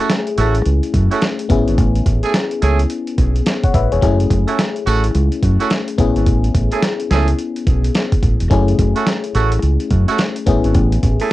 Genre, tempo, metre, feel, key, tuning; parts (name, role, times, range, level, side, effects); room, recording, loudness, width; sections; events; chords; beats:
R&B, new jack swing; 107 BPM; 4/4; swing 62% on 16ths; F# minor; A4 = 440 Hz
FM electric piano; accompaniment; 0.0-11.3 s; A3 to F#5; -20 LUFS; left 6 dB; chorus, cassette tape
warm horn section; stabs; 0.0-11.3 s; A3 to G#4; -21 LUFS; right 6 dB; cassette tape
dusty soul sampler-style drum kit; drums; 0.1-11.3 s; hi-hat, kick drum, snare drum; -18 LUFS; equal; overdrive, cassette tape
deep dub fingered electric bass; bass; 0.4-11.2 s; E1 to F#2; -16 LUFS; equal
little or no reverb; home recording on cassette; -14 LUFS; side -16 dB against mid
0.0-11.3 A section
0.0 F#m7; 1.5 Amaj7; 4.0 F#m7; 6.0 Amaj7; 8.5 F#m7; 10.5 Amaj7
0.10 0.66 1.22 | 1.78 2.34 2.90 3.46 | 4.02 4.58 5.14 5.70 | 6.26 6.83 7.39 7.95 | 8.51 9.07 9.63 10.19 | 10.75 11.31